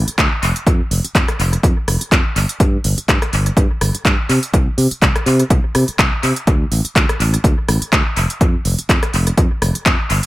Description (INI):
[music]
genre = filtered disco house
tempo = 124 BPM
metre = 4/4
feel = swing 55% on 16ths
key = D minor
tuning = A4 = 440 Hz
[part]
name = fingered electric bass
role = bass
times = 0.0-10.2 s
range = F1 to C3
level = -17 LUFS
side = equal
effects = sidechain pumping, low-pass filter
[part]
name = house drum kit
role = drums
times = 0.1-10.3 s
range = handclaps, hi-hat, rim click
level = -18 LUFS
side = equal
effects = sidechain pumping on hats, tape echo
[part]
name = electronic kick drum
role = drums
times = 0.2-10.0 s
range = none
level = -15 LUFS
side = equal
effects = overdrive
[sound]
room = light reverb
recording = echo-heavy mix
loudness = -13 LUFS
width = side -17 dB against mid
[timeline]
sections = 0.0-10.3 A section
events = none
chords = none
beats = 0.18 | 0.67 1.15 1.63 2.12 | 2.60 3.09 3.57 4.05 | 4.54 5.02 5.50 5.99 | 6.47 6.96 7.44 7.92 | 8.41 8.89 9.38 9.86